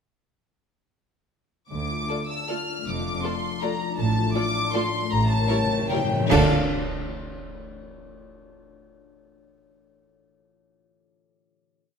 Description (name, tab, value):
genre	classical, orchestral ballroom waltz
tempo	141-172 BPM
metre	3/4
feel	rubato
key	D minor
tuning	A4 = 440 Hz
part	warm studio violin section	melody	1.7-6.5 s	F5 to F6	-28 LUFS	left 1 dB	none
part	concert harp	arpeggios	1.7-7.6 s	A2 to D6	-30 LUFS	left 8 dB	none
part	dark studio double bass section	bass	1.7-6.5 s	F1 to D2	-29 LUFS	right 3 dB	none
part	warm studio cello section	bass	1.7-6.5 s	D2 to D3	-29 LUFS	right 2 dB	none
part	warm studio violin section	second line	2.1-6.5 s	A4 to D5	-31 LUFS	left 2 dB	none
part	warm studio viola section	accompaniment	2.1-6.5 s	G3 to F4	-31 LUFS	right 2 dB	none
part	cymbal swell, clash cymbals and concert bass drum	percussion	4.0-7.1 s	none	-31 LUFS	equal	none
part	timpani	percussion	5.1-6.5 s	A2 to D3	-30 LUFS	right 1 dB	none
room	wet scoring stage reverb, RT60 1.7 s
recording	none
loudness	-22 LUFS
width	side -6 dB against mid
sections	1.7-6.3 A section; 6.3-7.5 final chord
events	slowing down 3.4-6.3; timpani fill 5.1-6.3; band accent 6.3-6.7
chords	1.7 Dm; 2.9 Dm/F; 4.0 Dm/A; 5.1 A7b9; 6.3 Dm